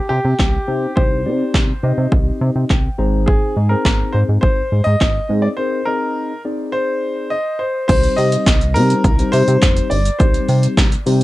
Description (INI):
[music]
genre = dance-pop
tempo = 104 BPM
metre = 4/4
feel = straight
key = C minor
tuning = A4 = 440 Hz
[part]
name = clear grand piano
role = melody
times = 0.0-10.7 s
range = G4 to Eb5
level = -20 LUFS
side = equal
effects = none
[part]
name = chorused synth bass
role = bass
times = 0.1-11.2 s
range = F1 to C3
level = -17 LUFS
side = equal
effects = sidechain pumping
[part]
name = punchy analog drum machine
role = drums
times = 0.4-11.2 s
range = crash cymbal, handclaps, hi-hat, kick drum, shaker, snare drum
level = -16 LUFS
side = equal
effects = none
[part]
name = mellow tine electric piano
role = accompaniment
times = 0.7-11.2 s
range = G3 to Bb5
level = -22 LUFS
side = left 3 dB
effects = lush chorus, sidechain pumping
[sound]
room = little or no reverb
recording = none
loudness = -14 LUFS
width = side -17 dB against mid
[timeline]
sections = 0.0-7.9 A section; 7.9-11.2 B section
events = tine electric piano fill 2.4-3.3; break 5.6-7.9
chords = 0.0 Cm; 3.0 Ab; 7.9 Cm